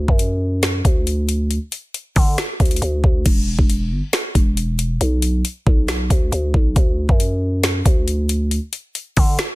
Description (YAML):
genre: hip hop, trap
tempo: 137 BPM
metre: 4/4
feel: half-time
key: unclear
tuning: A4 = 440 Hz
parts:
  - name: growling 808-style bass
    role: bass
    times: 0.0-9.4 s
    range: E1 to D3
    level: -19 LUFS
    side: equal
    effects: none
  - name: trap drum kit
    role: drums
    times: 0.1-9.5 s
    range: crash cymbal, hi-hat, kick drum, snare drum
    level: -17 LUFS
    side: equal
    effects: none
room: little or no reverb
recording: dense, heavily limited modern master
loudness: -16 LUFS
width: side -20 dB against mid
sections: 0.0-3.3 A section; 3.3-9.6 B section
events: none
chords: none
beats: 0.19 0.63 1.07 | 1.51 1.94 2.38 2.82 | 3.26 3.69 4.13 4.57 | 5.01 5.45 5.88 6.32 | 6.76 7.20 7.64 8.07 | 8.51 8.95 9.39